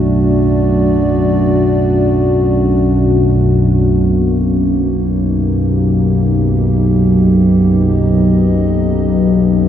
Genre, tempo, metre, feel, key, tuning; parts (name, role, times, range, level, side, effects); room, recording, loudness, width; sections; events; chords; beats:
dark ambient drone; free time; A4 = 439 Hz
dark analog pad; sustained chords; 0.0-9.7 s; A3 to D#5; -16 LUFS; right 1 dB; chorus
analog drone; drone; 0.0-9.7 s; B1 to F#2; -12 LUFS; equal; chorus
wet plate reverb, RT60 3.7 s; dreamy mix soaked in reverb; -10 LUFS; side -10 dB against mid
0.0-9.7 A section
fade-out on analog synth pad 0.0-9.7
0.0 D; 4.0 D#
free time